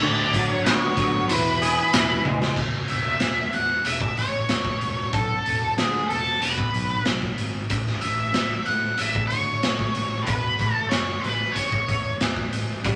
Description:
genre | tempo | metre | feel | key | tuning
psychedelic rock | 93 BPM | 4/4 | straight | E mixolydian | A4 = 440 Hz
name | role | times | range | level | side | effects
octave-fuzz lead guitar | melody | 0.0-12.1 s | G#4 to F#5 | -27 LUFS | equal | wah, distortion
twangy electric guitar | riff | 0.0-2.6, 12.9-13.0 s | D3 to G#4 | -28 LUFS | equal | rotary speaker
fuzz fingered electric bass | bass | 0.0-13.0 s | E1 to A2 | -34 LUFS | equal | overdrive
raw garage drum kit | drums | 0.3-13.0 s | crash cymbal, hi-hat, kick drum, snare drum, toms | -27 LUFS | equal | none
room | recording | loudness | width
moderate studio reverb, RT60 0.8 s | none | -23 LUFS | mono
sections
0.0-2.6 A section; 2.6-13.0 B section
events
drum fill 2.2-2.6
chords
0.0 D6; 1.3 E; 2.6 E5; 7.7 Aadd9

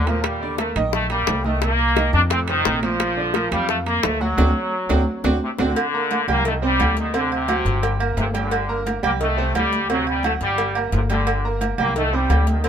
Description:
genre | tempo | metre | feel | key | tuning
latin, salsa | 174 BPM | 4/4 | straight | G harmonic minor from 5.8 s | A4 = 440 Hz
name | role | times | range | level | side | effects
brilliant trombone section | melody | 0.0-12.7 s | C3 to D4 | -22 LUFS | left 1 dB | none
upright bass | bass | 0.0-12.7 s | G1 to F2 | -23 LUFS | equal | none
bright concert grand piano | accompaniment | 0.1-12.7 s | A2 to Bb5 | -26 LUFS | right 4 dB | none
bongos and cowbell | percussion | 0.1-12.7 s | none | -28 LUFS | left 8 dB | none
congas | percussion | 0.1-12.7 s | none | -30 LUFS | left 1 dB | none
timbales and agogo bells | percussion | 0.1-12.7 s | none | -27 LUFS | right 6 dB | none
room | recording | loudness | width
light reverb | minimal, uncompressed stereo recording | -18 LUFS | side -8 dB against mid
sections
0.0-5.8 A section; 5.8-12.7 B section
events
band accent 4.4-5.8; drum fill 4.9-5.8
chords
0.2 Ebmaj7; 1.6 Cm7; 2.3 F7; 3.0 Bb; 4.4 D7; 5.8 Gm; 6.5 Cm; 7.1 D7; 7.8 Gm; 9.2 Cm; 9.9 D7; 10.6 Gm; 12.0 Cm

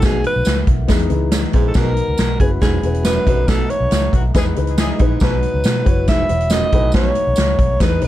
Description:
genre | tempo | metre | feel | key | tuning
uptempo 1960s-style soul | 139 BPM | 4/4 | straight | unclear | A4 = 440 Hz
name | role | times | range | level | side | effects
breathy alto saxophone | melody | 0.0-8.1 s | G#4 to E5 | -20 LUFS | equal | none
dark concert grand piano | accompaniment | 0.0-8.1 s | B2 to A#5 | -25 LUFS | left 6 dB | none
percussive tonewheel organ | sustained chords | 0.0-8.1 s | D#3 to A#4 | -31 LUFS | right 2 dB | overdrive, wide subtle chorus
warm baritone saxophone | riff | 0.0-7.1 s | F#2 to B2 | -25 LUFS | right 6 dB | none
vintage muted fingered electric bass | bass | 0.0-8.1 s | E1 to B2 | -20 LUFS | equal | none
swinging big-band drum kit | drums | 0.0-8.1 s | hi-hat, kick drum, snare drum | -17 LUFS | equal | none
tambourine | percussion | 0.0-7.9 s | none | -33 LUFS | right 6 dB | none
warm horn section | second line | 4.1-5.1 s | D#3 to G#4 | -29 LUFS | left 3 dB | analog delay
room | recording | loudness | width
light reverb | none | -14 LUFS | side -14 dB against mid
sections
0.0-8.1 A section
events
band accent 3.5-5.2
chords
0.0 B7; 0.9 Emaj7; 1.8 Bmaj7; 2.4 F#7sus4; 3.3 B7; 4.3 Emaj7; 5.2 Bmaj7; 5.9 F#7sus4; 6.7 B7

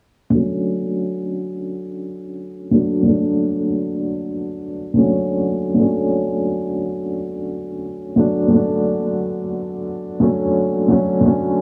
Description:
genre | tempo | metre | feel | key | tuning
trip hop | 88 BPM | 4/4 | swing 58% on 16ths | unclear | A4 = 440 Hz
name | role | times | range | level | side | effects
felt-muted upright piano | accompaniment | 0.3-11.6 s | D3 to D4 | -20 LUFS | equal | tremolo, low-pass filter, tape echo
room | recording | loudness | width
moderate spring reverb, RT60 1.3 s, studio reverb | low-pass filter, small room ambience | -20 LUFS | mono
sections
0.3-11.6 A section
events
none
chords
0.3 Dmaj7

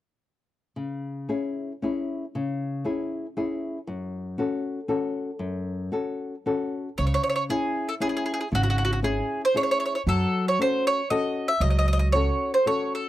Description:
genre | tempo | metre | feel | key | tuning
italian folk, Italian serenade | 116 BPM | 3/4 | rubato | C# harmonic minor | A4 = 440 Hz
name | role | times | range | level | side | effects
nylon-string guitar | accompaniment | 0.8-13.1 s | F#2 to A4 | -28 LUFS | left 2 dB | none
bowl-back mandolin | melody | 7.0-13.1 s | F#4 to E5 | -24 LUFS | right 1 dB | none
upright bass | bass | 7.0-12.3 s | G#1 to F#2 | -23 LUFS | right 1 dB | none
room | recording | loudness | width
little or no reverb | dry, close 1970s-style studio recording | -24 LUFS | side -14 dB against mid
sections
0.7-7.0 A section; 7.0-13.1 B section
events
none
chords
0.7 C#m; 3.9 F#m; 7.0 C#m; 10.1 F#m

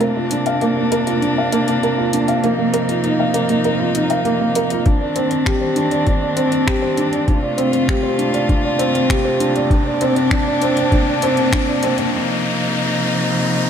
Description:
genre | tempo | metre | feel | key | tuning
piano and strings electronica | 99 BPM | 4/4 | straight | unclear | A4 = 438 Hz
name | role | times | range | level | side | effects
rich string quartet | sustained chords | 0.0-13.7 s | C3 to F4 | -20 LUFS | left 1 dB | sidechain pumping
felt-muted upright piano | riff | 0.0-12.2 s | Bb3 to F5 | -17 LUFS | right 1 dB | ping-pong delay
deep house drum kit | drums | 0.0-12.1 s | finger snaps, hi-hat | -27 LUFS | left 2 dB | overdrive
electronic kick drum | drums | 4.9-11.6 s | none | -18 LUFS | left 1 dB | none
riser | sound effects | 7.3-13.7 s | none | -27 LUFS | left 2 dB | none
room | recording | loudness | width
moderate concert hall reverb, RT60 2.1 s | none | -15 LUFS | side -8 dB against mid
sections
0.0-13.7 A section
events
build-up 0.0-13.7; riser 7.3-13.7; break 12.1-13.7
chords
0.0 Bb/C; 2.4 Ebsus2/C; 4.9 Cmadd9; 7.3 Dm7/C; 9.7 Bb/C; 12.1 Ebsus2/C

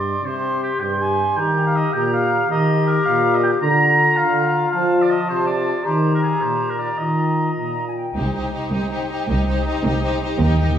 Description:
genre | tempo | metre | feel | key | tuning
cinematic | 107 BPM (dotted quarters) | 6/8 | straight | unclear | A4 = 444 Hz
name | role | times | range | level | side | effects
clear clarinet | second line | 0.0-7.9 s | F4 to G4 | -24 LUFS | left 3 dB | none
hollow flute section | second line | 0.0-8.2 s | G5 to C6 | -25 LUFS | left 1 dB | none
warm oboe | second line | 0.0-8.0 s | G4 to Bb5 | -21 LUFS | right 1 dB | none
warm trombone section | sustained chords | 0.0-8.1 s | G2 to F3 | -21 LUFS | equal | none
rich symphonic violin section | melody | 8.2-10.8 s | Bb4 to C5 | -30 LUFS | left 5 dB | none
warm symphonic violin section | second line | 8.2-10.8 s | G4 | -28 LUFS | left 3 dB | none
rich symphonic viola section | accompaniment | 8.2-10.8 s | Eb4 | -26 LUFS | right 1 dB | none
rich symphonic cello section | bass | 8.2-10.8 s | C2 to Eb2 | -23 LUFS | right 1 dB | none
warm studio double bass section | bass | 8.2-10.8 s | C2 to Eb2 | -22 LUFS | right 1 dB | none
timpani | percussion | 10.4-10.8 s | Eb3 | -24 LUFS | equal | none
room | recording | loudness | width
wet recital hall reverb, RT60 1.6 s | heard from further back in the room | -17 LUFS | side -9 dB against mid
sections
0.0-8.2 A section; 8.2-10.8 B section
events
timpani fill 10.4-10.8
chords
0.0 C5; 1.4 Eb; 3.6 Bb/D; 4.7 F; 5.8 Eb; 8.2 Cm

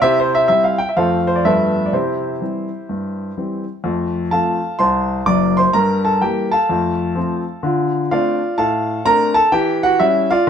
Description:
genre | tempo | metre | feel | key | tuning
jazz, stride piano | 126 BPM | 4/4 | swing 64% on 8ths | C major, F major from 3.8 s | A4 = 438 Hz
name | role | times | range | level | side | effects
warm concert grand piano | solo | 0.0-10.5 s | Gb1 to D6 | -15 LUFS | equal | none
room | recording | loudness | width
moderate stone room reverb, RT60 1.1 s | band playing live in one room | -15 LUFS | side -8 dB against mid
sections
0.0-3.8 A section; 3.8-10.5 B section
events
none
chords
0.0 C; 1.0 F; 1.5 G9; 1.9 C; 3.8 F; 5.7 Edim/G; 6.7 F; 7.6 Dm7; 9.5 C#dim/E

